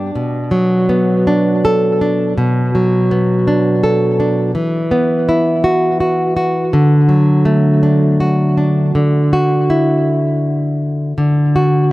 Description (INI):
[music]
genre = folk, solo fingerstyle acoustic guitar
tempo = 82 BPM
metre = 3/4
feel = rubato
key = D major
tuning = A4 = 439 Hz
[part]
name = nylon-string guitar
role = solo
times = 0.0-11.9 s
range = G2 to A4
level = -12 LUFS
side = equal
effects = tape echo
[sound]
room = little or no reverb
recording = close, detailed microphones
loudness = -12 LUFS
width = side -18 dB against mid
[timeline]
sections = 0.0-9.0 A section; 9.0-11.9 B section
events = none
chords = 0.1 Bm; 4.5 Esus2; 6.7 D; 9.0 Dadd9